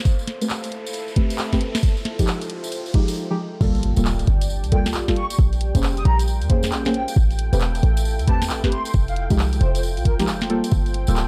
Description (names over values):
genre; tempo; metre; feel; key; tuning
UK garage, two-step garage; 135 BPM; 4/4; swing 63% on 16ths; G dorian; A4 = 440 Hz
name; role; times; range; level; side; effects
warm analog pad; sustained chords; 0.0-11.3 s; C5 to G5; -40 LUFS; equal; chorus, sidechain pumping
riser and impact; sound effects; 0.6-5.4 s; none; -36 LUFS; equal; none
deep dark ambient pad; texture; 0.0-11.3 s; F4 to G5; -36 LUFS; equal; chorus, built-in reverb, sidechain pumping
electronic kick drum; drums; 0.1-10.8 s; none; -22 LUFS; equal; overdrive
punchy analog drum machine; drums; 0.1-11.3 s; crash cymbal, handclaps, hi-hat, snare drum; -31 LUFS; equal; none
tambourine; percussion; 0.1-11.3 s; none; -39 LUFS; equal; none
deep mellow chord stab; stabs; 0.4-11.2 s; F3 to C5; -28 LUFS; equal; chorus, phaser, digital delay
short 808-style bass; bass; 3.6-11.3 s; D1 to F2; -23 LUFS; equal; none
breathy flute-like synth lead; melody; 4.7-10.2 s; Bb4 to Eb6; -31 LUFS; equal; ensemble chorus, vintage 12-bit sampler grit, digital delay
room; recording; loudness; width
light reverb, digital ambience; dark, warm production; -21 LUFS; mono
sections
0.0-3.6 A section; 3.6-11.3 B section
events
build-up 0.0-3.6; riser 0.6-3.2; filter sweep on synth stab 0.0-3.6; break 3.2-3.6; drop 3.6-11.3; impact 3.6-5.4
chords
0.0 Am9; 1.8 Fm9; 3.6 Gm9; 5.2 Bbm9; 6.9 Am9; 8.9 Fm9; 10.7 Gm9